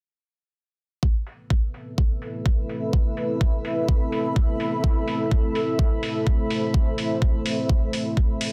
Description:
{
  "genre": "bass house",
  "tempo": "126 BPM",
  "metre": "4/4",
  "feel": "swing 58% on 16ths",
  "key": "A minor",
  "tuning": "A4 = 439 Hz",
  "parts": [
    { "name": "deep dark ambient pad", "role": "sustained chords", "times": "1.8-8.5 s", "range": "A3 to C5", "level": "-30 LUFS", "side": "equal", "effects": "chorus, built-in reverb, sidechain pumping" },
    { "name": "electronic kick drum", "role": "drums", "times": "1.0-8.3 s", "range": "none", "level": "-23 LUFS", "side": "equal", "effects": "overdrive" },
    { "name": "granular cloud pad", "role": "texture", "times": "2.3-8.5 s", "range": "A4 to B5", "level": "-32 LUFS", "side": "equal", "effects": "built-in reverb, sidechain pumping" },
    { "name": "electronic hi-hat", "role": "drums", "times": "1.3-8.5 s", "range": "none", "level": "-36 LUFS", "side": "equal", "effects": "overdrive, low-pass filter on hats" }
  ],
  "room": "light reverb",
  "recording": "dense, heavily limited modern master",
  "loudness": "-24 LUFS",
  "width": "mono",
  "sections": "1.0-8.5 A section",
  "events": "filter sweep on drum 1.0-8.5",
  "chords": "1.0 Amadd9"
}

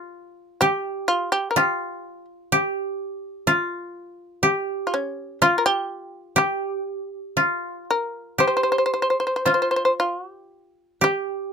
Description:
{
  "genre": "japanese traditional, Japanese chamber music",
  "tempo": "54-64 BPM",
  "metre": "4/4",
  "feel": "rubato",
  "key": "unclear",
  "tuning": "A4 = 440 Hz",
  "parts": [
    { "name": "shamisen", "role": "melody", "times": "0.0-11.5 s", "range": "Db4 to C5", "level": "-21 LUFS", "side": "equal", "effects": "none" },
    { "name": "koto", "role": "second line", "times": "0.0-11.5 s", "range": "F4 to G4", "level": "-23 LUFS", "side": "equal", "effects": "none" }
  ],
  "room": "moderate booth ambience, RT60 0.2 s",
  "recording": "none",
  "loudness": "-20 LUFS",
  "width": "side -6 dB against mid",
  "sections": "0.0-10.5 A section",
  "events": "none",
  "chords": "none"
}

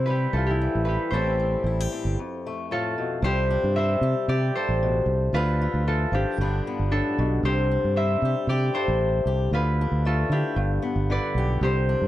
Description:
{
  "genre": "highlife guitar band",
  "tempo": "114 BPM",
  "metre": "4/4",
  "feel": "swing 55% on 16ths",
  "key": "C major",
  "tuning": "A4 = 440 Hz",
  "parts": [
    { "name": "concert harp", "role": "melody", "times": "0.0-12.1 s", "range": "D4 to E5", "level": "-26 LUFS", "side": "equal", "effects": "none" },
    { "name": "fingerpicked swing-style acoustic guitar", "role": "accompaniment", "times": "0.0-12.1 s", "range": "F2 to A4", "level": "-31 LUFS", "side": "left 4 dB", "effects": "none" },
    { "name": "fingered electric bass", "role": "bass", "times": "0.0-12.1 s", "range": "G1 to D3", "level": "-24 LUFS", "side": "right 1 dB", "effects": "none" }
  ],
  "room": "studio reverb",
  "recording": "dry, close 1970s-style studio recording",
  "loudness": "-22 LUFS",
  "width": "side -14 dB against mid",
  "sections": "0.0-3.2 A section; 3.2-12.1 B section",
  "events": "break 2.2-3.2",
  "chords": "0.0 C; 1.1 Am7; 2.2 F; 3.2 Csus2; 5.3 Dmadd9; 6.4 Gadd9; 7.4 Csus2; 9.5 Dmadd9; 10.6 G"
}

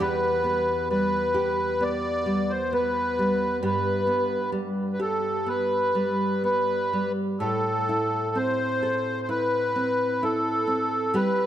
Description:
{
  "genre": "celtic folk, Celtic slow air",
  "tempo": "65 BPM",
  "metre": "4/4",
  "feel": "rubato",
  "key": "unclear",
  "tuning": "A4 = 438 Hz",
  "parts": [
    { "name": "accordion", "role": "melody", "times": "0.0-11.5 s", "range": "A4 to D5", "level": "-24 LUFS", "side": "equal", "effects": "light tremolo tuning" },
    { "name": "nylon-string guitar", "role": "accompaniment", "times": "0.0-11.5 s", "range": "E2 to A4", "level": "-27 LUFS", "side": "right 1 dB", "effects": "none" }
  ],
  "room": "moderate church reverb, RT60 3.5 s",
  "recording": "none",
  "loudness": "-23 LUFS",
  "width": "side -11 dB against mid",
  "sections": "0.0-11.5 A section",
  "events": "none",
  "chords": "0.0 Em; 3.6 G; 7.4 Am"
}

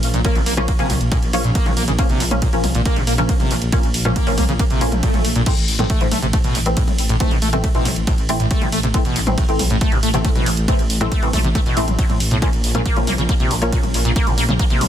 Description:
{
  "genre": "driving peak-time techno",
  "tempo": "138 BPM",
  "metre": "4/4",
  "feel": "straight",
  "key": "unclear",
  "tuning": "A4 = 440 Hz",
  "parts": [
    { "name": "filtered dub chord stab", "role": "stabs", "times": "0.0-14.1 s", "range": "E3 to Db4", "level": "-24 LUFS", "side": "left 1 dB", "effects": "ensemble chorus, sidechain pumping, dub echo" },
    { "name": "dark detuned saw bass", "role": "bass", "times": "0.0-14.9 s", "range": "A1 to A2", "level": "-22 LUFS", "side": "equal", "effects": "sidechain pumping" },
    { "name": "punchy analog drum machine", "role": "drums", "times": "0.0-14.9 s", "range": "crash cymbal, hi-hat, ride cymbal, toms", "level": "-24 LUFS", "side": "equal", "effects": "sidechain pumping on hats, sidechain pumping on toms, sidechain pumping on cymbals" },
    { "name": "overdriven acid bass", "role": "riff", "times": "0.1-14.8 s", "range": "G2 to Bb3", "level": "-23 LUFS", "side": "equal", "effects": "lush chorus, sidechain pumping, dub echo" },
    { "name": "electronic kick drum", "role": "drums", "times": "0.2-14.7 s", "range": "none", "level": "-19 LUFS", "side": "equal", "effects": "none" },
    { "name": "swell", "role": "sound effects", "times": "4.7-5.5 s", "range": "none", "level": "-26 LUFS", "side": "right 1 dB", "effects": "none" }
  ],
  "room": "light reverb",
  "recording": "dense, heavily limited modern master, faint mains hum",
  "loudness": "-15 LUFS",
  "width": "side -10 dB against mid",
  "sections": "0.0-14.9 A section",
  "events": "swell 4.7-5.5",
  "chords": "0.0 Bbm; 5.5 Am; 12.4 Bbm"
}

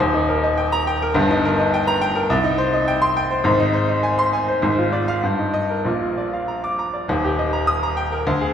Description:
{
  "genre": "classical, virtuoso piano study",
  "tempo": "96-106 BPM",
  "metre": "2/4",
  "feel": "rubato",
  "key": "Eb major",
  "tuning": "A4 = 439 Hz",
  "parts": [
    { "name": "clear grand piano", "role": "solo", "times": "0.0-8.5 s", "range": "Eb1 to Eb6", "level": "-17 LUFS", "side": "equal", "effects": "none" }
  ],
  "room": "wet recital hall reverb, RT60 1.7 s",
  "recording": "heard from further back in the room, lossy compression artefacts",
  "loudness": "-17 LUFS",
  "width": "side -8 dB against mid",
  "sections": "0.0-7.1 A section; 7.1-8.5 B section",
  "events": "none",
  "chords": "0.0 Eb; 1.2 Eb/G; 2.3 Cm; 3.5 Ab; 4.6 Ddim/Ab; 5.2 Eb/G; 5.8 Bb; 7.1 Eb"
}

